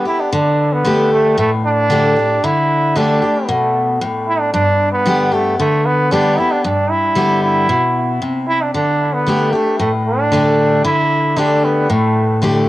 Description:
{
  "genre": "country",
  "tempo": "114 BPM",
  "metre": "4/4",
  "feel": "straight",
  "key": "unclear",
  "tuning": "A4 = 440 Hz",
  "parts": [
    { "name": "brilliant trombone", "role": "melody", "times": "0.0-12.4 s", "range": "A3 to E4", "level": "-16 LUFS", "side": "right 2 dB", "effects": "cassette tape, tape echo" },
    { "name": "picked steel-string acoustic guitar", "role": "accompaniment", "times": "0.0-12.7 s", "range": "G2 to G4", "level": "-15 LUFS", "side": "left 1 dB", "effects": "cassette tape" }
  ],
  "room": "moderate studio reverb, RT60 0.6 s",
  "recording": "home recording on cassette",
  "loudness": "-13 LUFS",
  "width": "side -16 dB against mid",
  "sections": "0.3-12.7 A section",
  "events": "none",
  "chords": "0.3 Dsus4; 4.5 G; 8.7 Dsus4"
}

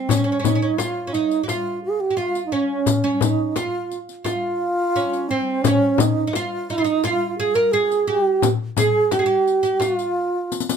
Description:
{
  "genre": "Arabic maqam ensemble",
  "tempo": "86 BPM",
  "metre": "4/4",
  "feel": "straight",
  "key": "F maqam bayati",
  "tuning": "A4 = 443 Hz",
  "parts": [
    { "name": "wooden-headed alto flute", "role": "melody", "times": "0.0-10.8 s", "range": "C4 to Bb4", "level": "-20 LUFS", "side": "right 3 dB", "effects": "none" },
    { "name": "oud", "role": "second line", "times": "0.0-10.8 s", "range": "C4 to Bb4", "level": "-26 LUFS", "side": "right 2 dB", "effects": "none" },
    { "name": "frame drum", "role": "percussion", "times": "0.1-10.0 s", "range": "none", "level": "-22 LUFS", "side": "left 8 dB", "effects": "none" },
    { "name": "riq", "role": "percussion", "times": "0.1-10.8 s", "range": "none", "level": "-27 LUFS", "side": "left 8 dB", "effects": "none" }
  ],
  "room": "moderate small room reverb, RT60 0.6 s",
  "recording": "minimal, uncompressed stereo recording",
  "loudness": "-18 LUFS",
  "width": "side -7 dB against mid",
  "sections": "0.1-10.8 A section",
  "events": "drum fill 10.5",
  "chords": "none"
}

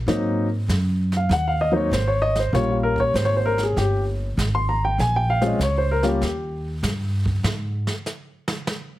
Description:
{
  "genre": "jazz piano trio",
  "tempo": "98 BPM",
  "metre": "4/4",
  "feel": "swing 69% on 8ths",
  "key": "Eb mixolydian",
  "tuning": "A4 = 440 Hz",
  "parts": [
    { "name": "upright bass", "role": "bass", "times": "0.0-7.8 s", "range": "G1 to Ab2", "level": "-23 LUFS", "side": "equal", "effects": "none" },
    { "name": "warm grand piano", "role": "melody", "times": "0.1-6.7 s", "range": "Gb3 to C6", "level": "-21 LUFS", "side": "left 1 dB", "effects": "none" },
    { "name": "jazz brush drum kit", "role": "drums", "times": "0.1-8.9 s", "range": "brushed snare drum, hi-hat, kick drum, snare drum", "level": "-30 LUFS", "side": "right 1 dB", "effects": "none" }
  ],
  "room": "light reverb",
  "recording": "heavily compressed radio sound",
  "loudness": "-20 LUFS",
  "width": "side -15 dB against mid",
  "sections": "0.0-9.0 A section",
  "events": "grand piano solo 0.0-9.0; drum solo 7.4-9.0",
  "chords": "0.1 Ab7; 2.5 Bbm13; 5.0 Bbm7; 6.2 Eb; 7.4 N.C."
}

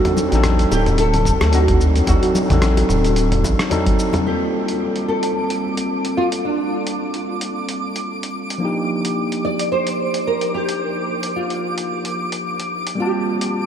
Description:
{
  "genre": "sunset chillout",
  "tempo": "110 BPM",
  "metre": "4/4",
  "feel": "swing 57% on 16ths",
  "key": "G minor",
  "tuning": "A4 = 445 Hz",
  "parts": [
    { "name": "nylon-string guitar", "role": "melody", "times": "0.0-13.7 s", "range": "D4 to D5", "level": "-23 LUFS", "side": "right 1 dB", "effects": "ensemble chorus, ping-pong delay" },
    { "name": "overdriven tine electric piano", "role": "accompaniment", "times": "0.0-13.7 s", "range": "F3 to A5", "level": "-21 LUFS", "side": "equal", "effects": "auto-pan, tape echo" },
    { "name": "dusty soul sampler-style drum kit", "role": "drums", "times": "0.1-13.5 s", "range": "hi-hat, rim click, shaker, toms", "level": "-25 LUFS", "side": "right 1 dB", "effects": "none" },
    { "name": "bongos and congas", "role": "percussion", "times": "0.1-4.2 s", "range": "none", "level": "-28 LUFS", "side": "left 4 dB", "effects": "none" },
    { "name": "round analog bass", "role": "bass", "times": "0.3-3.5 s", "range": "D1 to D2", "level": "-17 LUFS", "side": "equal", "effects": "none" },
    { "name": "electronic kick drum", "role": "drums", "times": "1.3-4.0 s", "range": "none", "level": "-21 LUFS", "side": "equal", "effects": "none" },
    { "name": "twinkling granular texture", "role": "texture", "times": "4.8-13.7 s", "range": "D6", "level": "-28 LUFS", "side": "equal", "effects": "built-in reverb, ensemble chorus" }
  ],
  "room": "wet huge ambient reverb, RT60 7.9 s",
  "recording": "dreamy mix soaked in reverb",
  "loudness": "-17 LUFS",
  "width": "side -8 dB against mid",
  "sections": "0.0-4.3 A section; 4.3-13.7 B section",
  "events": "none",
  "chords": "0.0 D7b9; 4.3 Gm11; 8.6 Ebmaj9; 13.0 Gm11"
}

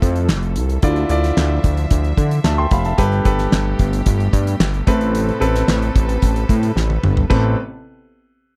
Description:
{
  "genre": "piano-driven pop",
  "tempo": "111 BPM",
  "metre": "4/4",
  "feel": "straight",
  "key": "A minor",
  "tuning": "A4 = 442 Hz",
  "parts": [
    { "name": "clear concert grand piano", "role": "accompaniment", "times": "0.0-7.6 s", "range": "A1 to C6", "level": "-24 LUFS", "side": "equal", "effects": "none" },
    { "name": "rich studio string section", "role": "sustained chords", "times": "0.0-7.6 s", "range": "B2 to E5", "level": "-32 LUFS", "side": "equal", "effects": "none" },
    { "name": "fat analog bass", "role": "bass", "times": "0.0-7.6 s", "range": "F1 to D3", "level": "-20 LUFS", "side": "equal", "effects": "none" },
    { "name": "damped 70s drum kit", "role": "drums", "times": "0.0-7.4 s", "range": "crash cymbal, handclaps, hi-hat, kick drum, snare drum, toms", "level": "-20 LUFS", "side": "equal", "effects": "none" }
  ],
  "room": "little or no reverb",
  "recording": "dry, close 1970s-style studio recording",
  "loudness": "-17 LUFS",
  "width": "mono",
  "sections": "0.0-7.3 A section; 7.3-8.6 B section",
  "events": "drum fill 6.8-7.3",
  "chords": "0.0 Fmaj7; 0.8 Dmadd9; 3.0 Gadd9; 4.9 Amadd9"
}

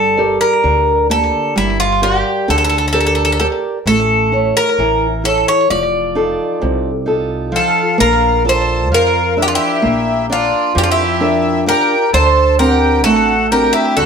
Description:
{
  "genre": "greek folk, Greek bouzouki band",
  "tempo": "131 BPM (eighths)",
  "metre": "9/8",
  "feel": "straight",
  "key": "unclear",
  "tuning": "A4 = 440 Hz",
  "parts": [
    { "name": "Greek bouzouki", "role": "melody", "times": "0.0-14.1 s", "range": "E4 to D5", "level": "-14 LUFS", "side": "equal", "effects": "slapback echo, plate reverb" },
    { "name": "picked old ladder-braced acoustic guitar", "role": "accompaniment", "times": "0.0-14.1 s", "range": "C3 to F#5", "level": "-18 LUFS", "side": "right 2 dB", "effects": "none" },
    { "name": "upright bass", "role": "bass", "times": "0.0-14.1 s", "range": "F1 to F2", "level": "-20 LUFS", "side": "left 1 dB", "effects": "none" },
    { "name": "accordion", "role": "second line", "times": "7.5-14.1 s", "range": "D4 to A4", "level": "-20 LUFS", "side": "left 2 dB", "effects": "none" }
  ],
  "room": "moderate small room reverb, RT60 0.6 s",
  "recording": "none",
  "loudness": "-12 LUFS",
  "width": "side -6 dB against mid",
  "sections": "0.0-8.0 A section; 8.0-14.1 B section",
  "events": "none",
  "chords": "0.0 Gm; 3.9 A; 5.7 F7; 8.0 Bb; 12.1 D7"
}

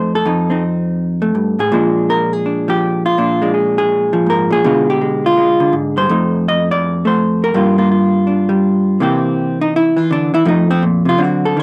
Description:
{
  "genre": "solo jazz",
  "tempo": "164 BPM",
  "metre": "4/4",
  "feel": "swing 65% on 8ths",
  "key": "unclear",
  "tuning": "A4 = 437 Hz",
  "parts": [
    { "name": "vintage hollow-body jazz guitar", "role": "solo", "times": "0.0-11.6 s", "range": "F2 to Eb5", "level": "-15 LUFS", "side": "equal", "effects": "none" }
  ],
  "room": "little or no reverb",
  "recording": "dry, close 1970s-style studio recording",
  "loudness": "-15 LUFS",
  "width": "mono",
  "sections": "0.0-11.6 A section",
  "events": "hollow-body jazz guitar solo 0.0-11.6",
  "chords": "0.0 F7; 1.7 Bb7; 4.6 Bdim7; 6.1 F7; 7.5 Gm7; 9.0 C7; 10.5 F"
}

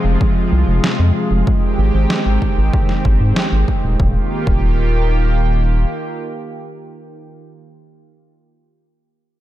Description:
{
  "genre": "synthwave",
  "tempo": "95 BPM",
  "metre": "4/4",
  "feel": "straight",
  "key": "Eb major",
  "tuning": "A4 = 440 Hz",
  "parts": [
    { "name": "lush unison pad", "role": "sustained chords", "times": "0.0-7.3 s", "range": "C3 to G4", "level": "-20 LUFS", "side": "right 1 dB", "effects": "chorus, sidechain pumping" },
    { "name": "round analog bass", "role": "bass", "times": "0.0-5.9 s", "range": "Eb1 to Ab2", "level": "-15 LUFS", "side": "equal", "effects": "none" },
    { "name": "electronic kick drum", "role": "drums", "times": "0.2-4.7 s", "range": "none", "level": "-17 LUFS", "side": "equal", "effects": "none" },
    { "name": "electronic snare drum", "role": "drums", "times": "0.8-3.5 s", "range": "none", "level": "-23 LUFS", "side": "equal", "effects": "overdrive" }
  ],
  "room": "light reverb",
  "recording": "dark, warm production",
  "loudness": "-14 LUFS",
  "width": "side -14 dB against mid",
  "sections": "0.0-4.0 A section; 4.0-6.5 B section",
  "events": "none",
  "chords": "0.0 Fm; 1.5 Abmaj7; 4.0 Ebadd9"
}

